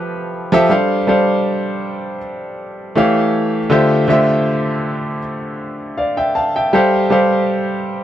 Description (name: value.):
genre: soul.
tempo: 80 BPM.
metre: 4/4.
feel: swing 54% on 16ths.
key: unclear.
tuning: A4 = 440 Hz.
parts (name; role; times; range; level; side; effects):
clear baby grand piano; solo; 0.0-8.0 s; D3 to A5; -14 LUFS; equal; none.
room: light reverb.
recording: dark, warm production.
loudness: -14 LUFS.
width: side -11 dB against mid.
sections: 0.7-8.0 A section.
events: none.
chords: 0.0 Fmaj7; 0.7 G7sus4; 3.0 A7b13; 3.7 Dm11; 6.7 G7sus4.